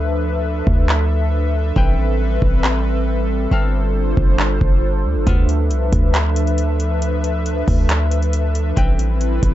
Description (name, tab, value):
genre	hip hop, atmospheric cloud-rap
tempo	137 BPM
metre	4/4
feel	half-time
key	D dorian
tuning	A4 = 443 Hz
part	airy breathy pad	sustained chords	0.0-9.5 s	F3 to E5	-22 LUFS	left 1 dB	chorus, sidechain pumping
part	warm 808-style bass	bass	0.0-9.5 s	G1 to D2	-18 LUFS	equal	none
part	kora	texture	0.0-9.5 s	B3 to G5	-31 LUFS	left 4 dB	none
part	booming analog drum machine	drums	0.7-9.5 s	handclaps, hi-hat, kick drum	-18 LUFS	equal	overdrive
room	little or no reverb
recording	nothing above 7.7 kHz, faint mains hum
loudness	-15 LUFS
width	side -13 dB against mid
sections	0.0-9.5 A section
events	break 0.0-5.3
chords	0.0 Dm69; 1.8 Am9; 3.5 G9sus4; 5.3 Dm69; 8.8 Am9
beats	| 0.01 0.45 0.89 1.33 | 1.76 2.20 2.64 3.08 | 3.52 3.95 4.39 4.83 | 5.27 5.71 6.14 6.58 | 7.02 7.46 7.89 8.33 | 8.77 9.21